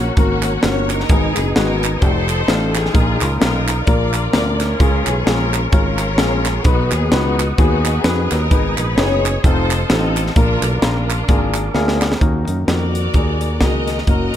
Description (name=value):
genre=uptempo gospel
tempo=130 BPM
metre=4/4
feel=swing 58% on 8ths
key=Eb minor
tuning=A4 = 438 Hz
part: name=clear symphonic string section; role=melody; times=0.0-14.4 s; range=Bb3 to Eb5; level=-22 LUFS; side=left 3 dB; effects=analog delay
part: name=warm baby grand piano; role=accompaniment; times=0.0-14.4 s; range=Ab2 to D5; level=-22 LUFS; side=left 3 dB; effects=analog delay
part: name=tonewheel organ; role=sustained chords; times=0.0-14.4 s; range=Db3 to Eb6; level=-28 LUFS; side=right 3 dB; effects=slow rotary speaker, overdrive, chorus vibrato
part: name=fingered electric bass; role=bass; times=0.0-14.3 s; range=F1 to Gb2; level=-20 LUFS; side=equal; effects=none
part: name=crisp fusion drum kit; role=drums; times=0.2-14.4 s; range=hi-hat, kick drum, snare drum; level=-18 LUFS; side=equal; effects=none
part: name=group handclap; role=percussion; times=0.4-12.1 s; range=none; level=-24 LUFS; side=right 7 dB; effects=none
room=light reverb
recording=echo-heavy mix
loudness=-14 LUFS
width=side -10 dB against mid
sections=0.0-12.2 A section; 12.2-14.4 B section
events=drum fill 11.7-12.2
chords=0.0 Gb; 1.1 Abm; 2.0 F13; 2.9 Bbsus4; 3.9 Bb; 4.8 Db; 6.7 B; 8.5 Abm; 9.4 F7; 10.4 Bb; 12.2 Ebm